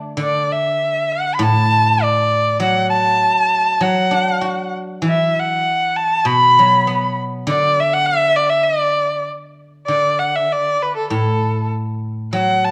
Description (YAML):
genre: chinese traditional, Chinese chamber ensemble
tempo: 99 BPM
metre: 2/4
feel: straight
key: D gong mode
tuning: A4 = 440 Hz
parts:
  - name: guzheng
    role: accompaniment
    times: 0.0-12.7 s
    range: A2 to F#4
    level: -23 LUFS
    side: equal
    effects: none
  - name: warm erhu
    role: melody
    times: 0.2-12.7 s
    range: A4 to B5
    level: -18 LUFS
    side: equal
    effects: none
room: moderate recital hall reverb, RT60 1.3 s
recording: dark, warm production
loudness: -17 LUFS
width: mono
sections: 0.2-9.9 A section; 9.9-12.7 B section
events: none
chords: none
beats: | 0.18 0.80 | 1.40 2.01 | 2.61 3.21 | 3.81 4.42 | 5.03 5.65 | 6.26 6.87 | 7.47 8.07 | 8.67 9.28 | 9.90 10.51 | 11.12 11.73 | 12.34